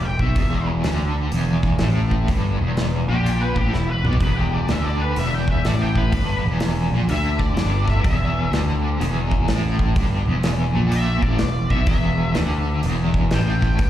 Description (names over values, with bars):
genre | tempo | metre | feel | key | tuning
blues rock power trio and southern rock | 125 BPM | 4/4 | swing 65% on 8ths | unclear | A4 = 440 Hz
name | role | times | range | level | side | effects
octave-fuzz lead guitar | melody | 0.0-13.9 s | E4 to G5 | -28 LUFS | left 2 dB | wah, distortion, slapback echo, tape echo
overdriven electric guitar | riff | 0.0-13.9 s | E2 to D3 | -23 LUFS | equal | tremolo, slapback echo
fuzz fingered electric bass | bass | 0.0-13.9 s | E1 to D2 | -21 LUFS | equal | overdrive
big rock drum kit | drums | 0.2-13.9 s | hi-hat, kick drum, snare drum, toms | -24 LUFS | equal | none
room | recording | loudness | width
light reverb | live gig heard through the venue's PA, club reverb | -18 LUFS | side -12 dB against mid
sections
0.0-13.9 A section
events
drum fill 3.7-4.2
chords
0.0 E5